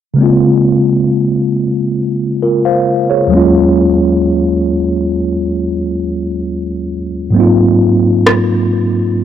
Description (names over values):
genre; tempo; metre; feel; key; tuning
contemporary R&B; 67 BPM; 4/4; straight; Bb minor; A4 = 439 Hz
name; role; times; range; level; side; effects
mellow tine electric piano; accompaniment; 0.1-9.2 s; Eb2 to F5; -10 LUFS; equal; medium stereo tremolo
electronic rim click; drums; 8.3-8.5 s; none; -14 LUFS; equal; overdrive
room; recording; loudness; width
digital ambience; dry, gritty hardware recording, transformer saturation; -10 LUFS; side -10 dB against mid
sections
0.2-9.2 A section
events
none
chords
0.2 Bbm9; 3.3 Ebm11; 7.4 Ab13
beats
| 0.19 1.08 1.98 2.88 | 3.77 4.67 5.56 6.46 | 7.35 8.25 9.14